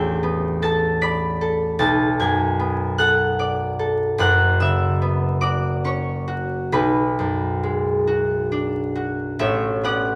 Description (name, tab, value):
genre	classical, solo harp piece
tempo	44-52 BPM (dotted quarters)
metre	6/8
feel	rubato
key	B dorian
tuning	A4 = 440 Hz
part	concert harp	solo	0.0-10.2 s	F#1 to B6	-21 LUFS	equal	none
room	wet recital hall reverb, RT60 1.6 s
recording	vinyl crackle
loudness	-21 LUFS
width	mono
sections	0.0-9.4 A section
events	none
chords	0.0 A9sus4; 1.8 Bm7; 4.2 F#7sus4; 6.7 Bm6; 9.4 Aadd9